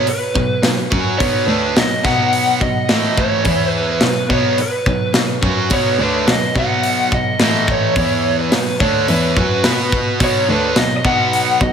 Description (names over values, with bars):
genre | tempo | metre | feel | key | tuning
hard rock | 107 BPM | 4/4 | straight | unclear | A4 = 440 Hz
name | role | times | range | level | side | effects
lead guitar through a small cranked amp | melody | 0.0-11.7 s | B4 to F#5 | -18 LUFS | equal | overdrive, tape echo
distorted electric guitar | riff | 0.0-11.7 s | A2 to B4 | -21 LUFS | right 8 dB | overdrive, slapback echo
overdriven semi-hollow guitar | riff | 0.0-11.7 s | A2 to B4 | -22 LUFS | left 9 dB | slapback echo
dark cello | bass | 0.0-11.7 s | D2 to B2 | -22 LUFS | equal | none
tight metal drum kit | drums | 0.1-11.7 s | hi-hat, kick drum, snare drum | -19 LUFS | equal | none
room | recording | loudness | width
moderate lush hall reverb, RT60 2.1 s | big arena sound | -13 LUFS | side -7 dB against mid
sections
0.0-11.7 A section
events
none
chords
0.0 B5; 2.9 A5; 3.5 E5; 4.0 B5; 7.4 A5; 8.0 E5; 8.5 B5